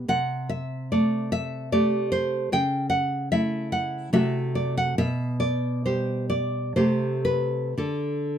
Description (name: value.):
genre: romantic piece for solo classical guitar.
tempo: 58-76 BPM.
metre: 3/4.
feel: rubato.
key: unclear.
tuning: A4 = 440 Hz.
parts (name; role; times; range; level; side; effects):
nylon-string guitar; solo; 0.0-8.4 s; B2 to G5; -23 LUFS; equal; none.
room: light reverb.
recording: minimal, uncompressed stereo recording.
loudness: -23 LUFS.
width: side -9 dB against mid.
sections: 0.0-8.4 A section.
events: none.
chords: 0.1 Am7/C; 2.5 A/C#; 4.2 D9/C; 5.0 G/B; 6.8 Am7/C; 7.8 D5.